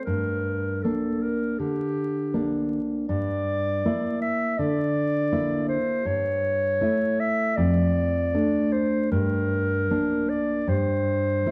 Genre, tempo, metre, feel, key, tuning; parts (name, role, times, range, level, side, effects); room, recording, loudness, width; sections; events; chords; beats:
romantic duo for clarinet and classical guitar; 79 BPM; 4/4; rubato; A4 = 442 Hz
mellow clarinet; melody; 0.0-11.5 s; G4 to E5; -29 LUFS; equal
nylon-string guitar; accompaniment; 0.0-11.5 s; F2 to E4; -27 LUFS; equal
moderate recital hall reverb, RT60 1.3 s; dark, warm production, vinyl crackle; -25 LUFS; mono
0.0-11.5 A section
0.1 Gm; 3.1 Em7b5/G; 6.1 A7/G; 7.6 Dm/F; 9.1 Gm; 10.7 N.C.
| 0.07 0.84 1.59 2.34 | 3.09 3.85 4.59 5.33 | 6.07 6.82 7.58 8.35 | 9.13 9.91 10.68 11.46